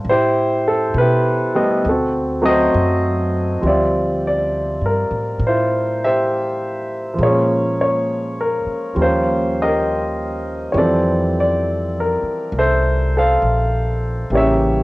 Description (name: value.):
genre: jazz ballad.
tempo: 67 BPM.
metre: 4/4.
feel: swing 66% on 8ths.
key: D minor from 3.6 s.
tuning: A4 = 439 Hz.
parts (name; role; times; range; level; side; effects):
warm baby grand piano; accompaniment; 0.0-14.8 s; C#3 to F5; -16 LUFS; equal; cassette tape.
upright bass; bass; 0.0-14.8 s; A1 to B2; -22 LUFS; equal; none.
room: moderate spring reverb, RT60 2.0 s.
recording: home recording on cassette.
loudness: -16 LUFS.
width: side -20 dB against mid.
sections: 0.0-3.6 A section; 3.6-14.8 B section.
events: none.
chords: 0.1 Asus2; 1.8 D7b9; 3.6 Dm11; 7.2 Bbm7; 9.0 Eb9; 10.8 Fmaj7; 14.3 A7b9.